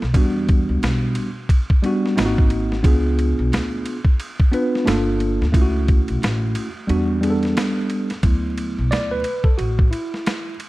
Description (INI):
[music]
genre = hip hop, jazz-hop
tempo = 89 BPM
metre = 4/4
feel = swing 60% on 16ths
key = unclear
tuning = A4 = 442 Hz
[part]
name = mellow tine electric piano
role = accompaniment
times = 0.0-10.6 s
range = F#3 to D5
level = -21 LUFS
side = right 1 dB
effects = medium stereo tremolo
[part]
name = upright bass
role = bass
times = 0.0-9.9 s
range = G1 to E2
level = -22 LUFS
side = equal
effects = none
[part]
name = boom bap sampler-style drum kit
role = drums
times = 0.0-10.7 s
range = hi-hat, kick drum, ride cymbal, snare drum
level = -20 LUFS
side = equal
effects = none
[sound]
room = light reverb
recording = vinyl crackle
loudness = -17 LUFS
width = side -19 dB against mid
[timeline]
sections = 0.0-8.2 A section; 8.2-10.7 B section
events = kick muted 6.9-8.2; tine electric piano solo 8.2-10.7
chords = 0.1 Em9; 2.2 G#9; 2.8 C#7b9; 4.9 Gm7; 5.5 F#m7; 6.9 Em9; 8.2 D69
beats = | 0.14 0.82 1.49 2.17 | 2.84 3.52 4.19 4.86 | 5.54 6.21 6.89 7.56 | 8.23 8.91 9.58 10.26